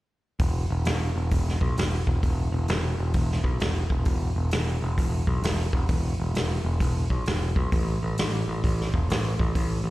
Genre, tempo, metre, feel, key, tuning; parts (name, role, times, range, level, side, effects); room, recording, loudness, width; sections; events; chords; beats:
blues rock power trio and southern rock; 131 BPM; 4/4; swing 65% on 8ths; A4 = 439 Hz
overdriven picked electric bass; bass; 0.4-9.9 s; E1 to B1; -26 LUFS; equal
vintage drum kit; drums; 0.4-9.7 s; hi-hat, kick drum, snare drum; -26 LUFS; equal
little or no reverb; live gig heard through the venue's PA, recital hall reverb; -23 LUFS; side -17 dB against mid
0.4-9.9 A section
| 0.40 0.85 1.31 1.77 | 2.23 2.69 3.14 3.60 | 4.06 4.51 4.97 5.43 | 5.89 6.34 6.80 7.26 | 7.72 8.17 8.63 9.09 | 9.55